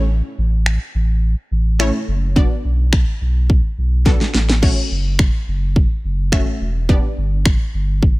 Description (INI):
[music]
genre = dance-pop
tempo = 106 BPM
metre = 4/4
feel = straight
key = F# phrygian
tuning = A4 = 438 Hz
[part]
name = wide unison pluck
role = accompaniment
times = 0.0-7.8 s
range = A3 to E5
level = -24 LUFS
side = equal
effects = sidechain pumping
[part]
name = warm sub bass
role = bass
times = 0.0-8.1 s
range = E1 to B1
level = -17 LUFS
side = equal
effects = sidechain pumping
[part]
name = pop drum kit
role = drums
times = 0.7-8.2 s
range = crash cymbal, finger snaps, kick drum, snare drum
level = -16 LUFS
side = equal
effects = none
[sound]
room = digital ambience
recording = none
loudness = -15 LUFS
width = side -21 dB against mid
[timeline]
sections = 0.0-8.2 A section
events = drum fill 4.1-4.6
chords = 0.0 A; 2.4 Bm; 4.6 F#m; 6.9 G